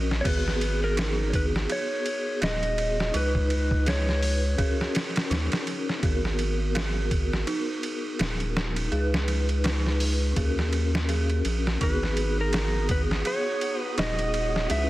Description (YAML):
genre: trip hop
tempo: 83 BPM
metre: 4/4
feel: swing 58% on 16ths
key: G# minor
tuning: A4 = 439 Hz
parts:
  - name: vibraphone with soft mallets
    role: accompaniment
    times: 0.0-14.9 s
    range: B3 to B4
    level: -32 LUFS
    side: left 1 dB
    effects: tremolo, tape echo
  - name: round analog bass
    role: bass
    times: 0.0-14.9 s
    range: D#1 to D#2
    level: -27 LUFS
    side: equal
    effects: none
  - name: flickering grainy texture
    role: texture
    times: 0.0-0.3, 12.3-14.9 s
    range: C#4 to D#6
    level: -39 LUFS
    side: equal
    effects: built-in reverb
  - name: trip hop sampler-style drum kit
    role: drums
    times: 0.1-14.9 s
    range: crash cymbal, hi-hat, kick drum, ride cymbal, snare drum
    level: -28 LUFS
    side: equal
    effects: none
  - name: electric slide guitar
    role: melody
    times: 0.2-5.3, 11.8-14.9 s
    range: A#4 to E5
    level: -31 LUFS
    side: equal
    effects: vintage 12-bit sampler grit, tape echo
  - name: dark detuned synth bell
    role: arpeggios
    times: 0.2-14.9 s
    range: D#4 to G#4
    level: -35 LUFS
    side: right 2 dB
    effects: chorus, tape echo
room: light reverb, digital ambience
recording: dense, heavily limited modern master, vinyl crackle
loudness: -24 LUFS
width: side -16 dB against mid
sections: 0.2-14.9 A section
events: break 0.0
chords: 0.2 G#m7; 3.1 C#5; 4.6 D#m7; 6.0 G#m7; 8.9 C#5; 10.4 D#m7; 11.8 G#m7